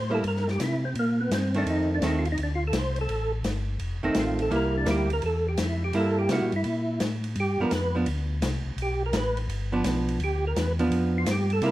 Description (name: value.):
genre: soul jazz organ trio.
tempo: 168 BPM.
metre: 4/4.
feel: swing 65% on 8ths.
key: unclear.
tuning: A4 = 440 Hz.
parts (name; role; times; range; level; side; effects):
percussive tonewheel organ; melody; 0.0-11.7 s; Bb3 to C5; -29 LUFS; right 1 dB; slow rotary speaker, chorus vibrato.
mellow tonewheel organ; bass; 0.0-11.7 s; F1 to C3; -28 LUFS; equal; chorus vibrato, slow rotary speaker.
archtop guitar, miked and amplified; accompaniment; 0.1-11.7 s; Eb3 to E4; -27 LUFS; right 2 dB; none.
open jazz drum kit; drums; 0.2-11.7 s; hi-hat, ride cymbal, snare drum; -33 LUFS; left 1 dB; none.
room: moderate large studio reverb, RT60 1.5 s.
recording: none.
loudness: -24 LUFS.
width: side -15 dB against mid.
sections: 0.0-11.7 A section.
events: tonewheel organ solo 0.0-11.7.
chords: 0.0 C7; 1.7 F7; 4.5 C7; 7.4 G7.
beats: | 0.24 0.59 0.95 1.31 | 1.67 2.02 2.38 2.73 | 3.09 3.45 3.80 4.16 | 4.52 4.87 5.23 5.58 | 5.94 6.30 6.65 7.01 | 7.36 7.72 8.07 8.43 | 8.79 9.14 9.50 9.86 | 10.21 10.57 10.92 11.28 | 11.63.